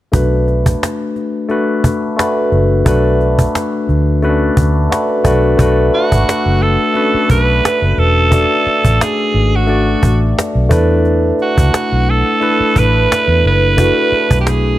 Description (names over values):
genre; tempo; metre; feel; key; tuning
lush 1970s-style soul; 88 BPM; 4/4; swing 54% on 16ths; B dorian; A4 = 441 Hz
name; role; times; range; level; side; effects
barky tine electric piano; accompaniment; 0.1-14.8 s; A3 to D5; -15 LUFS; left 2 dB; phaser
vintage muted fingered electric bass; bass; 0.1-14.8 s; E1 to E2; -14 LUFS; equal; none
cajon; drums; 0.1-14.6 s; none; -15 LUFS; equal; none
raspy alto saxophone; melody; 5.9-14.8 s; F#4 to B4; -15 LUFS; right 3 dB; none
room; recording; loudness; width
small room ambience; none; -11 LUFS; side -14 dB against mid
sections
0.1-5.6 A section; 5.6-14.8 B section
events
none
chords
0.1 Bm7; 10.7 E7sus4